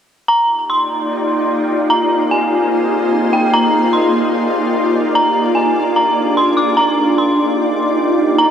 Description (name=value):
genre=hip hop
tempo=148 BPM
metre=4/4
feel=half-time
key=Eb major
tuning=A4 = 440 Hz
part: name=dark detuned synth bell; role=melody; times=0.3-8.5 s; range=G5 to D6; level=-16 LUFS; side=equal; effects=chorus, tape echo
part: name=shimmering ambient pad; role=sustained chords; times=0.8-8.5 s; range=Bb3 to D5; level=-15 LUFS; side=equal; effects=chorus, built-in reverb
part: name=wind-like tuned noise texture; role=texture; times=0.6-8.5 s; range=C4 to Ab5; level=-25 LUFS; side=equal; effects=built-in reverb
room=wet huge ambient reverb, RT60 5.0 s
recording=none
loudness=-12 LUFS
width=side -8 dB against mid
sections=0.3-8.5 A section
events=none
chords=0.3 Ebmaj9; 1.9 Ab69; 3.5 Ebmaj9; 5.2 Bb7; 6.8 Ebmaj9